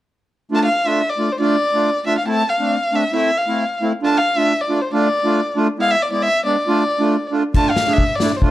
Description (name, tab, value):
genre	klezmer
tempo	137 BPM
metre	2/4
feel	straight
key	D dorian sharp4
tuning	A4 = 440 Hz
part	accordion	accompaniment	0.5-8.5 s	G#3 to G#4	-19 LUFS	right 1 dB	none
part	dark violin	melody	0.6-8.5 s	C5 to A5	-18 LUFS	left 1 dB	none
part	street-band drum kit	drums	7.5-8.5 s	crash cymbal, kick drum, snare drum	-17 LUFS	left 1 dB	none
room	moderate studio reverb, RT60 0.6 s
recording	dark, warm production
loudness	-15 LUFS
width	side -14 dB against mid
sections	0.5-7.5 A section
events	none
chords	0.5 Dm; 2.3 Am; 4.0 Dm; 5.8 E; 6.7 Dm